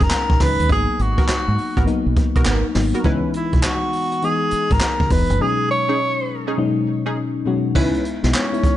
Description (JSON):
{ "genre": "R&B, new jack swing", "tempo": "102 BPM", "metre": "4/4", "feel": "swing 65% on 16ths", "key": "C# dorian", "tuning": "A4 = 442 Hz", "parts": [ { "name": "breathy tenor saxophone", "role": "melody", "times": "0.0-8.8 s", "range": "C#4 to C#5", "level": "-22 LUFS", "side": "right 1 dB", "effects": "digital delay" }, { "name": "mellow FM electric piano", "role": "accompaniment", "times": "0.0-8.8 s", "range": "B2 to F#4", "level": "-22 LUFS", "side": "left 4 dB", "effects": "chorus" }, { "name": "deep dub fingered electric bass", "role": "bass", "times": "0.0-8.3 s", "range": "E1 to G#2", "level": "-20 LUFS", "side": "equal", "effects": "none" }, { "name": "jazz brush drum kit", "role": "drums", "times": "0.0-8.8 s", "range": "crash cymbal, handclaps, hi-hat, kick drum, snare drum", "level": "-20 LUFS", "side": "equal", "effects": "none" }, { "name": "funky polysynth comp", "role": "stabs", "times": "1.2-8.0 s", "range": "B3 to B4", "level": "-26 LUFS", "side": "right 2 dB", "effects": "chorus, digital delay" } ], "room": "small room ambience", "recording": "nothing above 10.6 kHz", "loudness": "-16 LUFS", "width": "side -13 dB against mid", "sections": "0.0-7.8 A section; 7.8-8.8 B section", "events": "none", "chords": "0.0 B69; 0.7 G#m9; 3.0 C#m7; 5.4 B69; 7.8 C#m7" }